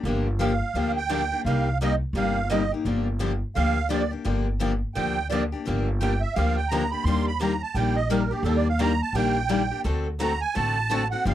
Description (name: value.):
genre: acoustic string swing (jazz manouche).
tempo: 171 BPM.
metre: 4/4.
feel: swing 61% on 8ths.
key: G minor.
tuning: A4 = 440 Hz.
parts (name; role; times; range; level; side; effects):
picked steel-string acoustic guitar; accompaniment; 0.0-11.3 s; C3 to A4; -28 LUFS; left 6 dB; none.
upright bass; bass; 0.0-11.3 s; G1 to Eb2; -26 LUFS; equal; none.
picked steel-string acoustic guitar; accompaniment; 0.1-11.3 s; C3 to A4; -31 LUFS; right 3 dB; none.
musette accordion; second line; 0.4-11.3 s; G4 to C6; -27 LUFS; right 6 dB; none.
room: little or no reverb.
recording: dry, close 1970s-style studio recording.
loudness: -22 LUFS.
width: side -12 dB against mid.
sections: 0.0-11.3 A section.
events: accordion solo 0.0-11.3.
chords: 0.0 Gm7; 1.5 Cm7; 2.9 Gm7; 7.1 Ebmaj7; 9.9 D7.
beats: | 0.05 0.40 0.75 1.10 | 1.45 1.80 2.15 2.50 | 2.85 3.20 3.56 3.90 | 4.25 4.61 4.96 5.31 | 5.66 6.01 6.36 6.71 | 7.06 7.41 7.76 8.11 | 8.46 8.81 9.15 9.51 | 9.86 10.20 10.55 10.90 | 11.25.